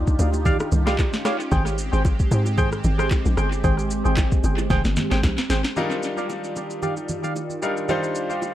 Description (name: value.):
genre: amapiano.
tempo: 113 BPM.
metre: 4/4.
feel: swing 55% on 16ths.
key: Eb major.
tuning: A4 = 442 Hz.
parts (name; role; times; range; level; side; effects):
warm analog pad; sustained chords; 0.0-8.5 s; Eb3 to D5; -29 LUFS; right 2 dB; chorus.
hollow log drum bass; bass; 0.0-5.6 s; F1 to Ab2; -22 LUFS; equal; none.
smooth R&B drum kit; drums; 0.1-8.5 s; handclaps, kick drum, rim click, shaker, snare drum; -24 LUFS; equal; overdrive, vintage 12-bit sampler grit, tape echo.
bongos and congas; percussion; 0.2-8.5 s; none; -30 LUFS; right 2 dB; tape echo.
percussive organ stab; stabs; 0.5-8.4 s; G4 to G5; -28 LUFS; right 1 dB; chorus, phaser, tape echo.
bright concert grand piano; accompaniment; 5.8-8.5 s; Gb3 to C5; -26 LUFS; left 2 dB; tape echo.
room: digital ambience.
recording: echo-heavy mix.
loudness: -20 LUFS.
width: side -13 dB against mid.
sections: 0.0-5.8 A section; 5.8-8.5 B section.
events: drop 0.0-5.8; drum fill 4.7-5.8.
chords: 0.0 Ebmaj9; 1.0 Eb9; 1.5 Abmaj7; 5.8 Ebmaj9.